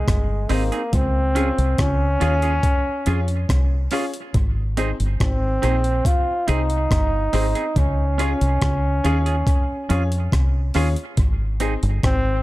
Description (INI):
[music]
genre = roots reggae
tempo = 70 BPM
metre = 4/4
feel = straight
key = unclear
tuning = A4 = 441 Hz
[part]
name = clear trombone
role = melody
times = 0.0-12.4 s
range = Ab3 to F4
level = -24 LUFS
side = equal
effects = tape echo
[part]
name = deep dub fingered electric bass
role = bass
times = 0.0-12.4 s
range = G1 to F2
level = -20 LUFS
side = equal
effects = none
[part]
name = breakbeat sampler-style drum kit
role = drums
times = 0.1-12.2 s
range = hi-hat, kick drum, rim click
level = -22 LUFS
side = equal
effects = none
[part]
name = semi-hollow electric guitar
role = accompaniment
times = 0.5-11.7 s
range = C4 to Ab4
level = -30 LUFS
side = right 6 dB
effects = tape echo
[part]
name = clear upright piano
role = stabs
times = 0.5-11.8 s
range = C4 to Db5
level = -30 LUFS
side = left 4 dB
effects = none
[sound]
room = little or no reverb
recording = echo-heavy mix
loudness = -18 LUFS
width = side -18 dB against mid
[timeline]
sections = 0.0-12.4 A section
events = none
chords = 0.0 Ab; 0.9 Db; 4.3 Ab; 7.8 Db; 11.2 Ab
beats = 0.07 | 0.93 1.78 2.63 3.49 | 4.34 5.20 6.05 6.91 | 7.76 8.61 9.47 10.32 | 11.18 12.03